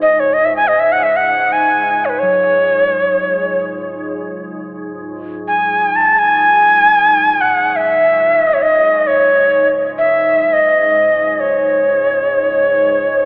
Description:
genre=world meditative, free-time meditation music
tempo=free time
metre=none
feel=none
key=C# minor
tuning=A4 = 439 Hz
part: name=breathy bright Native American-style cedar flute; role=melody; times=0.0-13.3 s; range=B4 to A5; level=-10 LUFS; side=equal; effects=dub echo
part: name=organ-like drone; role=drone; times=0.0-13.3 s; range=C#2 to G#2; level=-25 LUFS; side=equal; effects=ensemble chorus, built-in reverb
part: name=quartz singing bowl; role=texture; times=2.2-4.6 s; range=F#3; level=-37 LUFS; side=equal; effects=none
room=wet plate reverb, RT60 2.7 s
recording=echo-heavy mix, cassette tape, telephone sound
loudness=-10 LUFS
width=side -32 dB against mid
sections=0.0-4.1 A section; 4.1-13.3 A section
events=none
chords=none

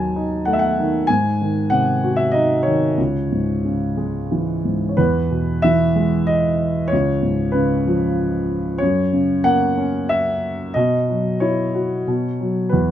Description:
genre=classical, lyrical solo piano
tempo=89-97 BPM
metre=3/4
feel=rubato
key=C# harmonic minor, E major from 5.0 s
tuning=A4 = 440 Hz
part: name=dark grand piano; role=solo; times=0.0-12.9 s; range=C#2 to A5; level=-17 LUFS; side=equal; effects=none
room=light reverb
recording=close, detailed microphones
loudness=-17 LUFS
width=side -11 dB against mid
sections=0.0-5.0 A section; 5.0-12.9 B section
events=none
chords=0.0 D#dim; 1.1 G#7; 3.0 C#m; 5.0 E; 6.9 C#7; 8.8 F#7; 10.8 Bsus4; 12.1 B5

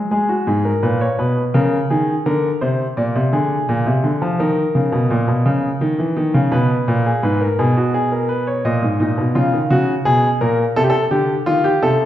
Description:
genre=classical, baroque-style two-part invention for grand piano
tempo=56 BPM (dotted quarters)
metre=12/8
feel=straight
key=G# minor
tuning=A4 = 439 Hz
part: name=warm baby grand piano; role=solo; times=0.0-12.1 s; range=G#2 to D#5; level=-15 LUFS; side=equal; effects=none
room=wet recital hall reverb, RT60 1.3 s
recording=heard from further back in the room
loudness=-15 LUFS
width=side -12 dB against mid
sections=0.1-12.1 A section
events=none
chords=0.1 G#m; 2.3 A#7; 4.4 D#5; 6.5 G#m; 8.6 D#5; 10.8 F7/C

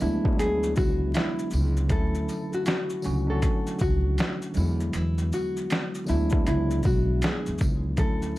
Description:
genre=lo-fi hip hop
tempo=79 BPM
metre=4/4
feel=swing 65% on 16ths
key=unclear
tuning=A4 = 441 Hz
part: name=nylon-string guitar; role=melody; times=0.0-8.4 s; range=E4 to A4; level=-30 LUFS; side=left 1 dB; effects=low-pass filter, plate reverb
part: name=tine electric piano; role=accompaniment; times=0.0-8.4 s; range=D3 to F#4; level=-30 LUFS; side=equal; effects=medium stereo tremolo, cassette tape, low-pass filter
part: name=upright bass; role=bass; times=0.0-8.3 s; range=B1 to E2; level=-26 LUFS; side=equal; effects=none
part: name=dusty soul sampler-style drum kit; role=drums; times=0.0-8.4 s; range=hi-hat, kick drum, shaker, snare drum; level=-26 LUFS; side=equal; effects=overdrive
part: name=tambourine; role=percussion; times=0.8-8.4 s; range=none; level=-47 LUFS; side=left 2 dB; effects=none
room=light reverb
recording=vinyl crackle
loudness=-23 LUFS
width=side -17 dB against mid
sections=0.0-8.0 A section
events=none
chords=0.0 E7; 1.9 Dmaj7; 4.6 E7

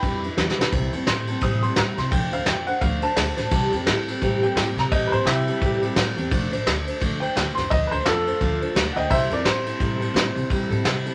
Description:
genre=rockabilly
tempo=172 BPM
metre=4/4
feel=swing 60% on 8ths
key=C major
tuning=A4 = 440 Hz
part: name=bright upright piano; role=melody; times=0.0-10.5 s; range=E4 to Eb6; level=-28 LUFS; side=equal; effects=none
part: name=picked steel-string acoustic guitar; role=accompaniment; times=0.0-11.1 s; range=C3 to C5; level=-29 LUFS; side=equal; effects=none
part: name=upright bass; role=bass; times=0.0-11.1 s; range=F1 to C3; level=-30 LUFS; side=equal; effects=none
part: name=soft brush drum kit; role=drums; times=0.0-11.1 s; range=kick drum, ride cymbal, snare drum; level=-26 LUFS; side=equal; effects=none
room=moderate small room ambience, RT60 0.5 s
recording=none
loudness=-22 LUFS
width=mono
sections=0.7-11.1 A section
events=drum fill 0.4-0.7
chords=0.0 G6; 0.7 C6; 2.1 F6; 3.5 C6; 6.3 F6; 9.1 C6

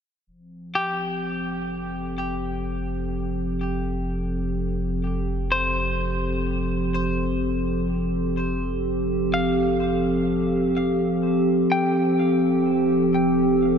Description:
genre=ambient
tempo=free time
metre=none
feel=none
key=F major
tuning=A4 = 440 Hz
part: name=warbly tape-like pad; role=sustained chords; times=0.5-13.8 s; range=F3 to A4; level=-22 LUFS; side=equal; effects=chorus, built-in reverb
part: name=round analog bass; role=bass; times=0.3-13.8 s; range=F1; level=-31 LUFS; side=equal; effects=none
part: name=semi-hollow electric guitar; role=arpeggios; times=0.8-13.8 s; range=G4 to G5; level=-29 LUFS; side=left 1 dB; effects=tape echo
room=wet huge ambient reverb, RT60 8.3 s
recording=none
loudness=-21 LUFS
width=side -7 dB against mid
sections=0.3-13.8 A section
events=none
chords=0.3 Fadd9

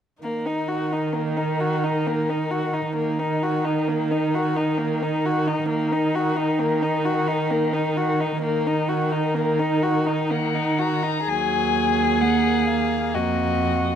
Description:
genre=classical, slow romantic movement for string quartet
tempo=65 BPM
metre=3/4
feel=rubato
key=Eb minor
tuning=A4 = 440 Hz
part: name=muted violin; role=melody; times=0.2-14.0 s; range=Bb4 to Bb5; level=-28 LUFS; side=left 11 dB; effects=none
part: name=muted violin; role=second line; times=0.2-14.0 s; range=Bb3 to Ab4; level=-25 LUFS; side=left 2 dB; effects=none
part: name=muted viola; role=accompaniment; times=0.2-14.0 s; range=Gb3 to Eb4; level=-27 LUFS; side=right 1 dB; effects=none
part: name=muted cello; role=bass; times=0.2-14.0 s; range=Eb2 to Eb3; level=-25 LUFS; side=right 5 dB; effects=none
room=moderate recital hall reverb, RT60 1.5 s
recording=close, detailed microphones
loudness=-20 LUFS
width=side -8 dB against mid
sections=0.2-11.3 A section; 11.3-14.0 B section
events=none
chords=0.2 Ebm

